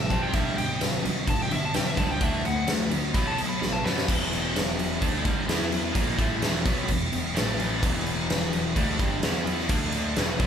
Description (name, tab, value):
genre	hard rock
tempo	128 BPM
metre	4/4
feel	straight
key	E minor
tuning	A4 = 442 Hz
part	bluesy overdriven lead guitar	melody	0.0-4.1 s	E5 to B5	-31 LUFS	left 1 dB	distortion
part	cranked stack guitar	riff	0.0-10.5 s	E2 to E4	-29 LUFS	equal	overdrive
part	modern bright picked electric bass	bass	0.0-10.5 s	E1 to F#2	-33 LUFS	equal	none
part	big rock drum kit	drums	0.1-10.5 s	crash cymbal, kick drum, snare drum	-26 LUFS	equal	none
room	moderate large studio reverb, RT60 1.2 s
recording	band playing live in one room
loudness	-23 LUFS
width	side -8 dB against mid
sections	0.0-4.1 A section; 4.1-10.5 B section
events	lead electric guitar solo 0.0-4.1; drum fill 3.6-4.1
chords	0.3 G/B; 2.2 D5; 3.1 B5; 4.1 Em; 7.4 A5; 7.8 Em; 9.7 D5; 10.2 E5